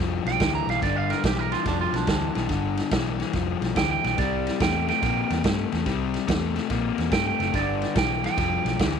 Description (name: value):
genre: electric blues shuffle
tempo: 143 BPM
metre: 4/4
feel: swing 67% on 8ths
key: G mixolydian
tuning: A4 = 440 Hz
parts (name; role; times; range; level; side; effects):
- crunchy overdriven guitar; riff; 0.0-9.0 s; G2 to Bb3; -27 LUFS; left 12 dB; none
- vintage muted fingered electric bass; bass; 0.0-9.0 s; F1 to G2; -29 LUFS; right 2 dB; none
- electric guitar at the edge of break-up; second line; 0.3-9.0 s; D4 to Bb5; -27 LUFS; right 12 dB; none
- vintage drum kit; drums; 0.3-8.9 s; kick drum, ride cymbal, snare drum; -28 LUFS; right 2 dB; none
room: moderate spring reverb, RT60 1.7 s, small room ambience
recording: 1960s-style stereo with parts hard left and right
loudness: -22 LUFS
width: side -7 dB against mid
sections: 0.0-9.0 A section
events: clean electric guitar solo 0.0-9.0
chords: 0.0 G7; 4.2 C7; 7.5 G7